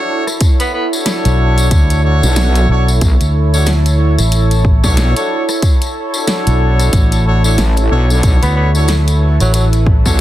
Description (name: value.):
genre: glitch hop.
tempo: 92 BPM.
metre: 4/4.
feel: swing 59% on 16ths.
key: B minor.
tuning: A4 = 440 Hz.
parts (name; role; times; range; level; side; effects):
clear horn section; stabs; 0.0-10.2 s; D4 to C#5; -21 LUFS; left 1 dB; sidechain pumping, dub echo.
warbly tape-like pad; texture; 0.0-10.2 s; E4 to C#5; -20 LUFS; right 1 dB; chorus, built-in reverb, sidechain pumping.
pop drum kit; drums; 0.3-10.2 s; hi-hat, rim click, snare drum; -20 LUFS; equal; studio reverb.
tambourine; percussion; 0.3-10.2 s; none; -24 LUFS; left 3 dB; none.
electronic kick drum; drums; 0.4-10.2 s; none; -12 LUFS; equal; studio reverb.
clear tenor saxophone; melody; 0.6-0.9, 8.4-9.7 s; F#3 to B3; -23 LUFS; right 1 dB; vintage 12-bit sampler grit, dub echo.
fingered electric bass; bass; 1.3-10.0 s; A1 to D2; -12 LUFS; equal; none.
wobble bass; bass; 2.2-10.2 s; A1 to B1; -12 LUFS; equal; chorus, overdrive.
room: small room ambience.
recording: dense, heavily limited modern master.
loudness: -10 LUFS.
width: side -14 dB against mid.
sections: 0.0-10.2 A section.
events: none.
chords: 0.0 Bm9.